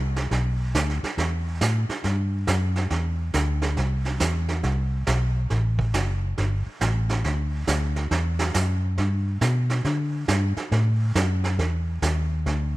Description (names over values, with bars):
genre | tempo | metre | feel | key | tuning
country, western swing | 138 BPM | 4/4 | swing 65% on 8ths | G major | A4 = 441 Hz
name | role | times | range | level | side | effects
vintage muted fingered electric bass | bass | 0.0-12.8 s | F#1 to D3 | -23 LUFS | equal | none
vintage brush drum kit | drums | 0.2-12.8 s | brushed snare drum, hi-hat, kick drum, snare drum | -28 LUFS | right 3 dB | none
room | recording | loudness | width
little or no reverb | none | -22 LUFS | side -18 dB against mid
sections
0.0-12.8 A section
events
none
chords
none